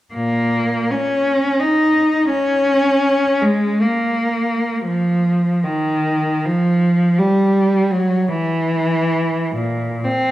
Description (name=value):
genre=classical, free, expressive piece for unaccompanied cello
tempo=49-89 BPM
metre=3/4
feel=rubato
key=Bb minor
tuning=A4 = 440 Hz
part: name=rich cello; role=solo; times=0.1-10.3 s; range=Bb2 to Eb4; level=-15 LUFS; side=equal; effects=none
room=moderate scoring stage reverb, RT60 1.8 s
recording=none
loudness=-15 LUFS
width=side -14 dB against mid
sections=0.1-4.8 A section; 4.8-10.3 B section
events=none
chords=none